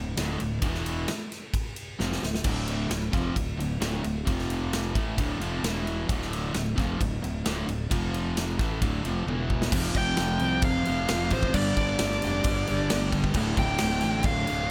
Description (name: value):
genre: hard rock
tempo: 132 BPM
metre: 4/4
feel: straight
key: D dorian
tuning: A4 = 437 Hz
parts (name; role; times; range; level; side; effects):
- distorted electric guitar; riff; 0.0-14.7 s; D2 to A3; -36 LUFS; equal; distortion
- overdriven semi-hollow guitar; riff; 0.0-14.7 s; D2 to A3; -36 LUFS; equal; none
- fuzz fingered electric bass; bass; 0.0-14.7 s; D1 to C2; -33 LUFS; equal; overdrive
- big rock drum kit; drums; 0.2-14.6 s; crash cymbal, kick drum, ride cymbal, snare drum, toms; -32 LUFS; equal; none
- overdriven electric guitar; riff; 9.7-14.7 s; D2 to G3; -35 LUFS; equal; none
- smooth overdriven lead guitar; melody; 10.0-14.7 s; C5 to G5; -32 LUFS; equal; none
room: studio reverb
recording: none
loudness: -27 LUFS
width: mono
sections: 0.0-9.7 A section; 9.7-14.7 B section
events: drum fill 2.0-2.5, 9.3-9.7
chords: 0.0 D5; 0.6 E5; 2.0 Dm; 4.3 F5; 5.0 Dm; 5.6 E5; 6.1 Dm; 7.9 F5; 8.6 Dm; 9.3 E5; 9.7 F5; 11.6 G5; 13.4 Dm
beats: 0.18 | 0.64 1.09 1.55 2.00 | 2.46 2.91 3.37 3.83 | 4.28 4.74 5.19 5.65 | 6.10 6.56 7.01 7.47 | 7.92 8.38 8.84 9.29 | 9.74 10.20 10.65 11.10 | 11.55 12.00 12.46 12.91 | 13.36 13.81 14.26 14.71